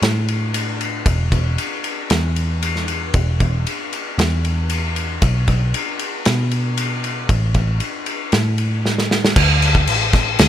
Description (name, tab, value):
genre	rock, shoegaze and dream pop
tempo	116 BPM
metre	4/4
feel	straight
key	unclear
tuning	A4 = 438 Hz
part	vintage muted picked electric bass	bass	0.0-10.5 s	E1 to B2	-19 LUFS	equal	none
part	loose indie drum kit	drums	0.0-10.5 s	crash cymbal, kick drum, ride cymbal, snare drum	-18 LUFS	equal	none
room	little or no reverb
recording	none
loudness	-16 LUFS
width	side -11 dB against mid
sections	0.0-9.4 A section; 9.4-10.5 B section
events	drum fill 8.9-9.4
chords	none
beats	0.02 0.54 | 1.06 1.58 2.10 2.62 | 3.14 3.66 4.18 4.70 | 5.22 5.74 6.26 6.78 | 7.29 7.81 8.33 8.85 | 9.37 9.89 10.40